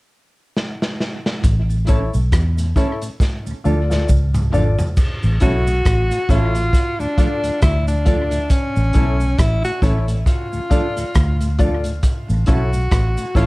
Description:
roots reggae; 68 BPM; 4/4; swing 58% on 16ths; A major; A4 = 437 Hz
crunchy breakbeat drum kit; drums; 0.6-13.5 s; crash cymbal, hi-hat, kick drum, rim click, snare drum, toms; -18 LUFS; equal
vintage muted fingered electric bass; bass; 1.4-13.5 s; G#1 to E2; -18 LUFS; equal
cabasa; percussion; 1.4-13.5 s; -41 LUFS; right 5 dB
mellow tonewheel organ; accompaniment; 1.7-13.5 s; D2 to D4; -28 LUFS; left 1 dB; slow rotary speaker
mellow electric guitar; accompaniment; 1.9-13.5 s; C#4 to A4; -31 LUFS; right 4 dB; dub echo
dark baby grand piano; stabs; 1.9-13.5 s; E4 to D5; -25 LUFS; left 4 dB
bright alto saxophone; melody; 5.4-13.5 s; C#4 to F#4; -23 LUFS; equal; dub echo
light reverb; dark, warm production; -15 LUFS; side -22 dB against mid
0.0-1.4 A section; 1.4-5.0 B section; 5.0-13.5 C section
drum fill 0.6-1.4, 3.2-5.0
0.0 N.C.; 1.4 A; 3.2 Dm; 5.0 A; 6.7 Dm; 8.5 A; 10.3 Dm; 12.0 A
0.56 | 1.44 2.32 3.21 4.09 | 4.97 5.85 6.74 7.62 | 8.50 9.38 10.27 11.15 | 12.03 12.92

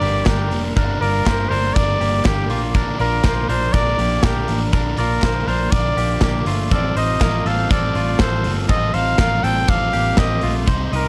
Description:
jangly indie pop; 121 BPM; 4/4; straight; A4 = 439 Hz
clear trumpet; melody; 0.0-11.1 s; G4 to G5; -24 LUFS; equal
glockenspiel with soft plastic mallets; second line; 0.0-11.1 s; Bb5 to F6; -37 LUFS; equal
crunchy overdriven guitar; accompaniment; 0.0-11.1 s; G2 to F4; -28 LUFS; equal
direct-recorded clean electric guitar; arpeggios; 0.0-11.1 s; A3 to Eb5; -29 LUFS; equal; spring reverb
vintage muted fingered electric bass; bass; 0.0-11.1 s; F1 to C2; -25 LUFS; equal; tube saturation
big rock drum kit; drums; 0.0-11.0 s; hi-hat, kick drum, ride cymbal, snare drum; -23 LUFS; equal
group handclap; percussion; 0.3-10.3 s; -38 LUFS; equal
little or no reverb; dry, gritty hardware recording, cassette tape; -18 LUFS; mono
0.0-11.1 A section
0.0 Gm; 2.5 Bb; 6.7 Fadd9
0.27 | 0.76 1.26 1.76 2.25 | 2.75 3.25 3.74 4.24 | 4.73 5.23 5.73 6.22 | 6.72 7.21 7.71 8.20 | 8.70 9.19 9.69 10.18 | 10.68

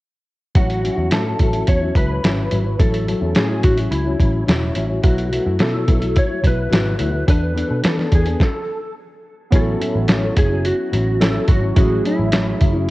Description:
indie pop, bedroom pop; 107 BPM; 4/4; straight; A major; A4 = 440 Hz
clean lap steel guitar; melody; 0.6-12.9 s; E4 to C#5; -24 LUFS; equal; ensemble chorus, cassette tape
nylon-string guitar; accompaniment; 0.6-12.9 s; A2 to A4; -23 LUFS; left 2 dB; lush chorus, warbly pitch drift, cassette tape
vintage muted picked electric bass; bass; 0.6-12.9 s; E1 to E3; -21 LUFS; equal
lo-fi sampler-style drum kit; drums; 0.6-12.7 s; hi-hat, kick drum, snare drum; -17 LUFS; equal; cassette tape
warbly lo-fi synth keys; accompaniment; 9.5-12.9 s; G#3 to G#4; -27 LUFS; right 3 dB; chorus, cassette tape
little or no reverb; home recording on cassette; -15 LUFS; side -18 dB against mid
0.5-9.5 A section; 9.5-12.9 B section
stop 8.4-9.5
0.5 A6; 2.8 F#m7/A; 5.0 B7sus4; 7.3 E7sus4; 9.5 A6; 11.8 F#m7
| 0.55 1.11 1.67 2.23 | 2.79 3.35 3.91 4.47 | 5.04 5.60 6.16 6.72 | 7.28 7.84 8.40 8.96 | 9.52 10.08 10.64 11.21 | 11.77 12.33 12.89

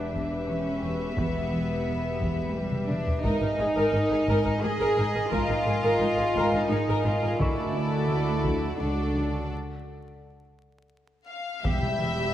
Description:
cinematic, suspense film score; 87 BPM; 3/4; straight; A4 = 440 Hz
warm symphonic violin section; melody; 0.0-12.3 s; D5 to F5; -35 LUFS; left 2 dB
warm symphonic violin section; second line; 0.0-12.3 s; Eb4 to B4; -34 LUFS; left 1 dB
dark symphonic viola section; accompaniment; 0.0-12.3 s; G3 to Bb4; -34 LUFS; right 1 dB
glass harmonica; sustained chords; 0.0-12.3 s; G4 to B5; -35 LUFS; equal
dark symphonic double bass section; bass; 0.0-12.3 s; E1 to D2; -31 LUFS; right 1 dB
rich symphonic cello section; bass; 0.0-12.3 s; E2 to Ab4; -29 LUFS; equal
bright concert grand piano; texture; 0.0-9.5 s; Eb4 to C#6; -38 LUFS; right 1 dB
dark studio cello section; riff; 0.1-12.2 s; E2 to D4; -33 LUFS; equal
taiko ensemble; drums; 0.2-12.3 s; -32 LUFS; equal
warm symphonic violin section; texture; 11.6-12.3 s; E6 to B6; -40 LUFS; left 2 dB
mellow French horn section; sustained chords; 11.7-12.3 s; G3 to G4; -35 LUFS; left 3 dB
wet scoring stage reverb, RT60 1.9 s; vinyl crackle; -24 LUFS; side -12 dB against mid
0.0-11.6 A section
drum fill 2.7-3.2, 11.1-11.6; break 9.5-11.6
0.0 Em7; 3.2 Absus2; 7.4 D; 9.5 N.C.; 11.6 Em
0.49 | 1.17 1.86 2.55 | 3.24 3.93 4.63 | 5.32 6.01 6.70 | 7.39 8.08 8.78 | 9.49 10.21 10.93 | 11.64

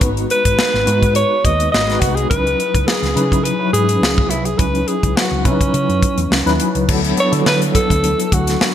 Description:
polished 1980s jazz-funk pop; 105 BPM; 4/4; swing 54% on 16ths; C# minor; A4 = 440 Hz
tine electric piano; accompaniment; 0.0-8.7 s; F#3 to B4; -20 LUFS; left 1 dB; fast tremolo, analog chorus
hollow-body short-scale fingered electric bass; bass; 0.0-8.5 s; G#1 to D3; -20 LUFS; equal
tight funk drum kit; drums; 0.0-8.7 s; crash cymbal, hi-hat, kick drum, snare drum; -18 LUFS; equal; gated reverb
breathy alto saxophone; melody; 0.3-8.7 s; C#4 to D#5; -18 LUFS; equal
congas; percussion; 6.9-8.7 s; -32 LUFS; right 3 dB
moderate plate reverb, RT60 2.9 s; bright 1980s-style digital production; -13 LUFS; side -10 dB against mid
0.0-6.9 A section; 6.9-8.7 B section
0.0 G#m7; 2.3 C#m11; 6.9 D69
| 0.01 0.59 1.16 1.73 | 2.31 2.88 3.45 4.03 | 4.60 5.17 5.75 6.32 | 6.89 7.46 8.04 8.61

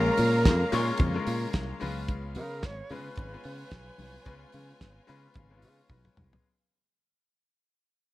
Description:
disco; 110 BPM; 4/4; swing 56% on 16ths; A4 = 440 Hz
bright reedy alto flute; melody; 0.0-5.9 s; A#4 to C#5; -32 LUFS; equal
rich studio violin section; second line; 0.0-6.1 s; E#4 to A#5; -40 LUFS; equal
bright grand piano; accompaniment; 0.0-6.5 s; G#3 to G#5; -34 LUFS; left 5 dB
clear studio string section; sustained chords; 0.0-6.4 s; C#3 to E#5; -40 LUFS; left 1 dB
fingered electric bass; bass; 0.0-6.4 s; G#1 to C#3; -31 LUFS; equal
damped 70s drum kit; drums; 0.2-6.4 s; hi-hat, kick drum, snare drum, toms; -28 LUFS; right 1 dB
congas; percussion; 0.2-6.3 s; -38 LUFS; left 3 dB
small room ambience; dark, warm production; -25 LUFS; side -16 dB against mid
0.0-6.4 A section
fade-out 0.0-6.4; grand piano fill 1.3-2.1, 4.8-6.4; drum fill 5.9-6.4
0.0 A#m7; 1.8 C#7
0.45 1.00 1.54 | 2.09 2.63 3.18 3.72 | 4.27 4.81 5.36 5.90

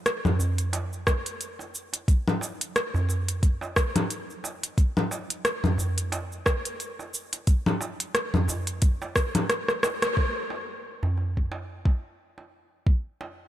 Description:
downtempo; 89 BPM; 4/4; swing 57% on 16ths
organic electronic drum kit; drums; 0.1-10.1 s; congas, hi-hat, rim click, shaker; -26 LUFS; left 1 dB; low-pass filter on hats, low-pass filter on perc, low-pass filter on snare, low-pass filter on room
darbuka; percussion; 0.2-13.4 s; -29 LUFS; right 1 dB
electronic kick drum; drums; 1.1-13.0 s; -22 LUFS; equal
light reverb; dry, gritty hardware recording; -24 LUFS; side -13 dB against mid
0.0-10.2 A section; 10.2-13.5 B section
drum fill 9.5-10.2; band accent 10.0-10.3
0.06 0.73 1.40 | 2.08 2.75 3.43 4.10 | 4.78 5.45 6.12 6.80 | 7.47 8.15 8.82 9.49 | 10.17 10.84 11.52 12.19 | 12.87

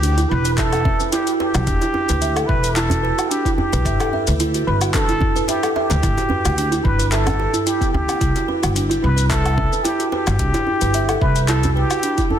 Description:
organic downtempo; 110 BPM; 4/4; swing 54% on 16ths; E minor; A4 = 440 Hz
trumpet with plunger mute; melody; 0.0-12.4 s; G4 to B4; -23 LUFS; equal; digital delay, shimmer reverb
buzzing kalimba; arpeggios; 0.0-12.4 s; B3 to E5; -22 LUFS; right 3 dB; tape echo, shimmer reverb
upright bass; bass; 0.0-11.8 s; E1 to D2; -20 LUFS; equal; sidechain pumping
afro-pop drum kit; drums; 0.0-12.3 s; handclaps, hi-hat, shaker, woodblock; -26 LUFS; left 2 dB; overdrive
djembe; percussion; 0.0-12.4 s; -28 LUFS; right 2 dB
electronic kick drum; drums; 0.6-12.3 s; -22 LUFS; equal; overdrive
light reverb, studio reverb; dense, heavily limited modern master; -16 LUFS; side -10 dB against mid
0.0-12.4 A section
0.0 Em9; 3.9 G; 8.2 Cmaj7
0.04 0.58 1.13 | 1.67 2.22 2.76 3.31 | 3.85 4.40 4.95 5.49 | 6.04 6.58 7.13 7.67 | 8.22 8.76 9.31 9.85 | 10.40 10.95 11.49 12.04

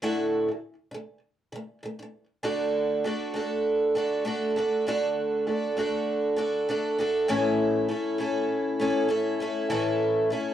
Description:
pop; 99 BPM; 4/4; swing 55% on 16ths; D major; A4 = 440 Hz
picked twelve-string acoustic guitar; solo; 0.0-10.5 s; A2 to A4; -24 LUFS; equal
light reverb; worn, warbling old tape, cassette tape, warbly pitch drift; -24 LUFS; side -10 dB against mid
0.0-2.4 A section; 2.4-10.5 B section
0.0 Dadd9; 2.4 D; 7.3 A
| 0.03 0.64 1.24 1.84 | 2.45 3.05 3.66 4.26 | 4.87 5.47 6.08 6.68 | 7.29 7.89 8.50 9.10 | 9.71 10.31

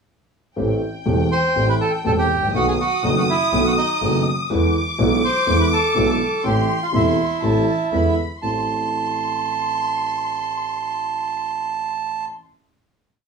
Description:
tango; 122 BPM; 4/4; rubato; A minor; A4 = 439 Hz
warm studio violin section; second line; 0.6-12.3 s; G5 to D#6; -25 LUFS; left 3 dB
warm concert grand piano; accompaniment; 0.6-12.3 s; E1 to G4; -22 LUFS; equal
clear double bass; bass; 0.6-8.6 s; E1 to E2; -24 LUFS; right 1 dB
bandoneon; melody; 1.3-12.3 s; D#4 to C6; -22 LUFS; right 4 dB
wet studio ambience, RT60 0.5 s; band playing live in one room, small room ambience; -18 LUFS; side -5 dB against mid
0.6-8.4 A section; 8.4-12.4 final chord
0.6 Am7; 2.5 B7; 4.5 E7; 6.4 Am; 7.9 E7; 8.4 Am
| 0.56 1.06 1.56 2.05 | 2.54 3.03 3.52 4.01 | 4.50 4.99 5.47 5.96 | 6.45 6.94 7.43 7.92 | 8.43 8.92 9.41 9.90 | 10.39 10.87 11.36 11.85

